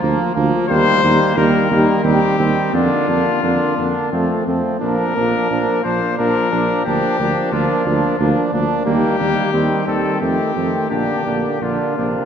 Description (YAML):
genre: classical, brass quintet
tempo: 88 BPM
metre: 3/4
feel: straight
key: Bb major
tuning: A4 = 441 Hz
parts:
  - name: bright trumpet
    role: melody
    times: 0.0-12.3 s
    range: F4 to C5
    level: -21 LUFS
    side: left 5 dB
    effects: none
  - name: bright trumpet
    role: second line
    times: 0.0-12.3 s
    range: Bb3 to D4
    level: -23 LUFS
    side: right 4 dB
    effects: none
  - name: brilliant trombone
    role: accompaniment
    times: 0.0-12.3 s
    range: C3 to F3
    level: -23 LUFS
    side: right 2 dB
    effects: none
  - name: clear French horn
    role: accompaniment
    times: 0.0-12.3 s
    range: F3 to Bb3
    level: -22 LUFS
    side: left 2 dB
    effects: none
  - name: mellow tuba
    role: bass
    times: 0.0-12.1 s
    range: Bb1 to F2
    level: -20 LUFS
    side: right 2 dB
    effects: none
room: wet church reverb, RT60 3.6 s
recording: nothing above 10.6 kHz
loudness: -15 LUFS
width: side -8 dB against mid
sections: 0.0-12.3 A section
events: none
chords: 0.0 Bb/D; 0.7 Eb; 2.7 Bb/F; 4.1 F; 4.8 Bb; 6.9 Bb/D; 8.9 Eb; 10.2 F7; 10.9 Bb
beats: 0.02 | 0.69 1.37 2.04 | 2.73 3.43 4.12 | 4.81 5.50 6.18 | 6.86 7.53 8.19 | 8.86 9.52 10.21 | 10.90 11.62